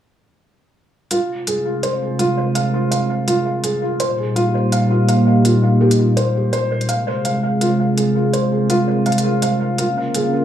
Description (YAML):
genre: half-time drum and bass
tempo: 166 BPM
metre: 4/4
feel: swing 56% on 16ths, half-time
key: F minor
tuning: A4 = 442 Hz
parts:
  - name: dark analog pad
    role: sustained chords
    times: 1.1-10.4 s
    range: Bb3 to F5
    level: -17 LUFS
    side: equal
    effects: chorus
  - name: felt-muted upright piano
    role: arpeggios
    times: 1.1-10.4 s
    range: F4 to F5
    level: -20 LUFS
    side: equal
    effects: low-pass filter, analog delay
  - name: electronic hi-hat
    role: drums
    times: 1.1-10.2 s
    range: none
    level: -26 LUFS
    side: equal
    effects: none
room: moderate spring reverb, RT60 1.4 s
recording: echo-heavy mix, small room reverb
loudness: -15 LUFS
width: side -10 dB against mid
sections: 1.1-10.4 A section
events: filter sweep on analog synth pad 1.1-10.4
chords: 1.1 Fm; 4.0 Eb; 6.9 Fm; 9.8 Bbm